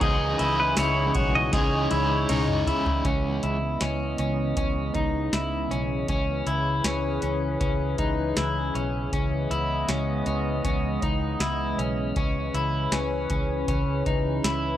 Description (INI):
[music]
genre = dream pop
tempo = 79 BPM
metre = 4/4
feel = straight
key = C# minor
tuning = A4 = 439 Hz
[part]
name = pedal steel guitar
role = melody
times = 0.0-2.6 s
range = B4 to D#5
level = -28 LUFS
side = equal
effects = analog delay
[part]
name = overdriven electric guitar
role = accompaniment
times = 0.0-3.6 s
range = C#3 to G#4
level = -30 LUFS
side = right 2 dB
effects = tremolo, lush chorus
[part]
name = warbly tape-like pad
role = sustained chords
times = 0.0-14.8 s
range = C#3 to D#5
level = -29 LUFS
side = left 1 dB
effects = chorus, built-in reverb
[part]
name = electric guitar at the edge of break-up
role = arpeggios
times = 0.0-14.8 s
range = C#4 to G#4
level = -28 LUFS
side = left 2 dB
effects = lush chorus, analog delay
[part]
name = vintage muted fingered electric bass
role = bass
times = 0.0-14.8 s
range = B1 to C#2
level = -29 LUFS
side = equal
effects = none
[part]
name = booming analog drum machine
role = drums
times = 0.0-14.6 s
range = hi-hat, kick drum, ride cymbal, snare drum, tambourine, toms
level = -28 LUFS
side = equal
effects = none
[sound]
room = little or no reverb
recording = dry, gritty hardware recording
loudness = -23 LUFS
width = side -12 dB against mid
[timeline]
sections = 0.0-3.0 A section; 3.0-14.8 B section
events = drum fill 1.5-3.0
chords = 0.0 C#madd9; 3.0 C#m9/B